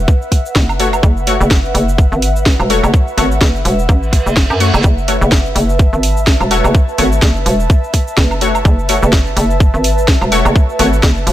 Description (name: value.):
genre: bass house.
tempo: 126 BPM.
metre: 4/4.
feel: swing 57% on 16ths.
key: F# minor.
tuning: A4 = 440 Hz.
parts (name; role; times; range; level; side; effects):
hollow knocking FM bass; bass; 0.0-11.3 s; E1 to F#2; -15 LUFS; equal; overdrive, sidechain pumping.
airy breathy pad; texture; 0.0-11.3 s; B4 to A5; -20 LUFS; equal; chorus, sidechain pumping.
electronic kick drum; drums; 0.1-11.1 s; none; -10 LUFS; equal; overdrive.
garage drum kit; drums; 0.1-11.3 s; cabasa, hi-hat, snare drum, woodblock; -19 LUFS; right 1 dB; overdrive.
orchestra-hit-like synth stab; stabs; 0.8-10.9 s; A3 to C#5; -18 LUFS; left 3 dB; built-in reverb, sidechain pumping, digital delay.
reverse cymbal; sound effects; 4.1-4.8 s; none; -24 LUFS; right 5 dB; none.
room: digital ambience.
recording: none.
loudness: -10 LUFS.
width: side -13 dB against mid.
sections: 0.0-11.3 A section.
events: reverse cymbal 4.1-4.8.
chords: 0.0 F#m.